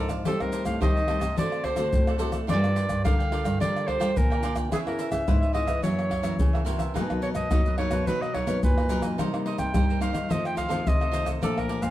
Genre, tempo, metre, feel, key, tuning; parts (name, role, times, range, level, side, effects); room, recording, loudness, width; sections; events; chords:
samba and choro; 107 BPM; 4/4; straight; A4 = 442 Hz
clear clarinet; melody; 0.0-11.9 s; Ab4 to G5; -30 LUFS; equal
cavaquinho; accompaniment; 0.0-11.9 s; D#4 to A5; -34 LUFS; right 5 dB
nylon-string guitar; accompaniment; 0.0-11.9 s; F2 to Bb4; -32 LUFS; left 3 dB
nylon-string guitar; bass; 0.0-11.9 s; G2 to B3; -30 LUFS; right 1 dB
maracas, surdo, pandeiro and tamborim; percussion; 0.1-11.9 s; -26 LUFS; left 1 dB
wet studio reverb, RT60 0.6 s; heard from further back in the room; -23 LUFS; side -14 dB against mid
0.0-11.9 A section
0.3 Am7b5; 1.4 D7; 2.5 Gm7; 4.7 Dbm7; 5.8 Gb7; 7.0 Bmaj7; 9.2 Cm7; 10.3 F7